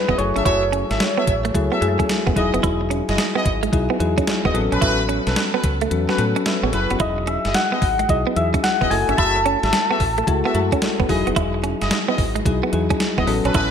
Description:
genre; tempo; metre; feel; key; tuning
R&B, new jack swing; 110 BPM; 4/4; swing 65% on 16ths; E major; A4 = 445 Hz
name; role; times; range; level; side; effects
soft struck synth lead; melody; 0.0-2.3, 7.0-11.1 s; B4 to A5; -22 LUFS; left 1 dB; chorus, ping-pong delay
soft electric-piano-like synth keys; accompaniment; 0.0-13.7 s; F#3 to E5; -24 LUFS; left 3 dB; chorus
direct-recorded clean electric guitar; riff; 0.1-13.7 s; G#3 to E4; -25 LUFS; right 6 dB; analog chorus
warm horn section; stabs; 0.1-13.7 s; C#4 to E5; -26 LUFS; left 1 dB; ping-pong delay
deep dub fingered electric bass; bass; 0.1-13.7 s; E1 to A2; -24 LUFS; equal; none
crisp 8-bit digital drum machine; drums; 0.1-13.7 s; hi-hat, kick drum, snare drum; -23 LUFS; right 1 dB; overdrive, gated reverb
room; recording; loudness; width
moderate plate reverb, RT60 2.0 s, digital ambience; bright 1980s-style digital production; -17 LUFS; side -8 dB against mid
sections
0.0-13.7 A section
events
kick muted 5.9-7.0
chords
0.2 F#m9; 2.4 Emaj9; 4.5 A69; 7.0 Emaj9; 8.9 F#m9; 11.1 Emaj9

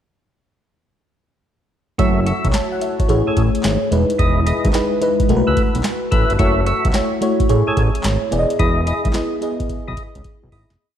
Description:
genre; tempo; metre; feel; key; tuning
R&B, new jack swing; 109 BPM; 4/4; swing 67% on 16ths; unclear; A4 = 440 Hz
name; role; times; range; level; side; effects
FM electric piano with soft pad layer; accompaniment; 2.0-10.8 s; G#3 to A5; -19 LUFS; equal; chorus, phaser
percussive tonewheel organ; stabs; 2.0-10.7 s; E4 to E5; -24 LUFS; equal; overdrive, slow rotary speaker
fat analog bass; bass; 2.0-10.8 s; E1 to C#2; -20 LUFS; equal; none
booming analog drum machine; drums; 2.0-10.8 s; handclaps, hi-hat, kick drum, snare drum; -20 LUFS; equal; none
room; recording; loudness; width
light reverb; dark, warm production; -15 LUFS; side -10 dB against mid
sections
2.0-10.8 verse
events
fade-out 8.6-10.8; drum fill 9.7-10.8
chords
2.0 F#m7; 3.1 Amaj7; 3.9 Emaj7; 5.3 B7sus4; 6.4 F#m7; 7.5 Amaj7; 8.3 Emaj7

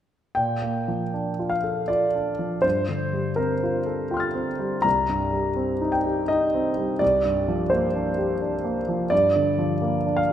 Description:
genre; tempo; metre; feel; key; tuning
classical, impressionist solo piano; 77-86 BPM; 3/4; rubato; Bb major; A4 = 440 Hz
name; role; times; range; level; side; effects
warm concert grand piano; solo; 0.3-10.3 s; C2 to A6; -21 LUFS; equal; none
room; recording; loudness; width
moderate scoring stage reverb, RT60 1.8 s; none; -21 LUFS; side -10 dB against mid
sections
0.4-10.3 A section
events
none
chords
0.4 Bbmaj7; 2.6 Gm11; 4.8 Cm7; 7.0 Bb69/C; 9.1 Gm7

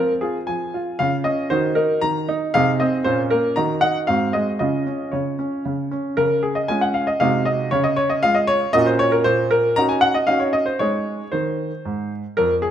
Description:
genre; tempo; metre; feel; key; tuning
classical-period piano sonatina; 116 BPM; 3/4; straight; Db major; A4 = 440 Hz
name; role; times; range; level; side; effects
clear baby grand piano; solo; 0.0-12.7 s; F2 to Bb5; -18 LUFS; equal; none
room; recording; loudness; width
moderate recital hall reverb, RT60 1.7 s; close, detailed microphones; -18 LUFS; side -10 dB against mid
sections
0.0-6.2 A section; 6.2-12.7 B section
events
none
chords
0.0 Fm; 1.0 Dbadd9; 1.5 Ebm; 2.5 Ab/C; 3.1 Bbm; 3.6 Ebm; 4.1 Ab7; 4.6 Db; 7.2 Ab7/C; 7.7 Db; 8.8 Gb/Bb; 9.3 Ebm7/Bb; 10.8 Ab

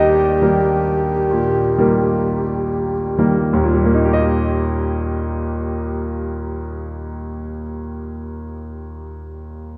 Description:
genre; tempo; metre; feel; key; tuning
classical, romantic duo for alto saxophone and grand piano; 40-46 BPM (dotted quarters); 12/8; rubato; Eb major; A4 = 439 Hz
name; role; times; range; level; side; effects
clear alto saxophone; melody; 0.0-3.4 s; G4; -21 LUFS; equal; none
bright grand piano; accompaniment; 0.0-9.8 s; Eb2 to Eb5; -21 LUFS; equal; none
room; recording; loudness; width
moderate scoring stage reverb, RT60 1.6 s; dark, warm production; -19 LUFS; mono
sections
0.0-4.1 A section; 4.1-9.8 B section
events
slowing down 0.0-4.1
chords
0.0 Eb

